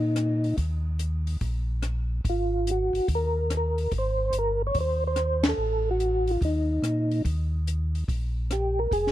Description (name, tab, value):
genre	soul jazz organ trio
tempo	144 BPM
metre	4/4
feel	swing 67% on 8ths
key	unclear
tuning	A4 = 440 Hz
part	percussive tonewheel organ	melody	0.0-9.1 s	Eb4 to Db5	-26 LUFS	equal	slow rotary speaker, chorus vibrato
part	mellow tonewheel organ	bass	0.0-9.1 s	F1 to Bb2	-27 LUFS	equal	slow rotary speaker
part	compact cocktail drum kit	drums	0.2-9.1 s	hi-hat, kick drum, ride cymbal, rim click, snare drum	-29 LUFS	equal	none
room	studio reverb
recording	dry, close 1970s-style studio recording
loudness	-24 LUFS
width	side -13 dB against mid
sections	0.0-9.1 A section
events	band accent 5.4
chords	0.0 Eb5; 2.3 Abadd9; 5.6 F7b9/A (rootless); 7.2 Eb5